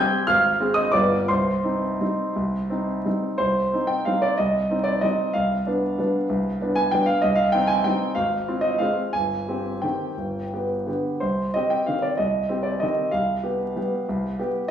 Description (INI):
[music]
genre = classical, piano waltz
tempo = 161-202 BPM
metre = 3/4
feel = rubato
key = C minor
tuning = A4 = 440 Hz
[part]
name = warm concert grand piano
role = solo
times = 0.0-14.7 s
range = G1 to G6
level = -21 LUFS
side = equal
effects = none
[sound]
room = moderate recital hall reverb, RT60 1.4 s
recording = vinyl crackle, studio reverb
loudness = -21 LUFS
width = side -9 dB against mid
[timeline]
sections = 0.0-3.4 A section; 3.4-14.7 B section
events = none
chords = 0.3 Fm/Ab; 0.9 G7; 1.3 Cm; 5.4 G7/C; 7.2 Cm; 8.2 Fm/Ab; 9.1 Cm/G; 10.2 G; 11.2 Cm; 13.1 G7/C